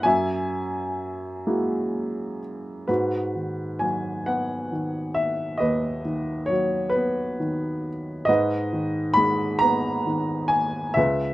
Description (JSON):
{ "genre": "classical, lyrical solo piano", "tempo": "42-45 BPM (dotted quarters)", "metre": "6/8", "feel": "rubato", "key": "G# minor", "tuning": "A4 = 440 Hz", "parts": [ { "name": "warm upright piano", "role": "solo", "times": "0.0-11.3 s", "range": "C#2 to B5", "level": "-22 LUFS", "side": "equal", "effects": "none" } ], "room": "light reverb", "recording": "none", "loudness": "-22 LUFS", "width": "side -16 dB against mid", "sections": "0.0-2.9 A section; 2.9-11.3 B section", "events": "none", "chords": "0.1 F#9; 2.9 G#m7; 8.3 G#madd9", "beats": "| 0.05 1.47 | 2.89 4.27 | 5.60 6.94 | 8.28 9.62 | 10.97" }